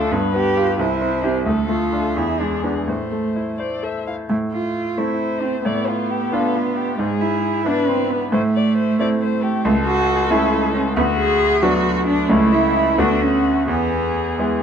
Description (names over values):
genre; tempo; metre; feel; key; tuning
quick classical-period movement for piano trio; 83-92 BPM (dotted quarters); 6/8; rubato; A minor, A major from 9.6 s; A4 = 437 Hz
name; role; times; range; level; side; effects
muted violin; melody; 0.0-14.6 s; D4 to F5; -25 LUFS; left 8 dB; none
muted cello; second line; 0.0-14.4 s; G#3 to G#4; -20 LUFS; right 3 dB; none
bright concert grand piano; accompaniment; 0.0-14.6 s; C2 to C5; -20 LUFS; equal; none
room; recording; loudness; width
moderate stone room reverb, RT60 1.4 s; dark, warm production; -17 LUFS; side -7 dB against mid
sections
0.0-4.3 A section; 4.3-14.6 A section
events
none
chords
0.1 G7; 0.8 C; 1.5 Dm; 2.2 E7; 2.9 Am; 5.7 Bm7b5/A; 7.0 E7/G#; 8.3 Am; 9.6 A/C#; 11.0 Bm/D; 12.3 A/C#; 13.0 D6; 13.7 E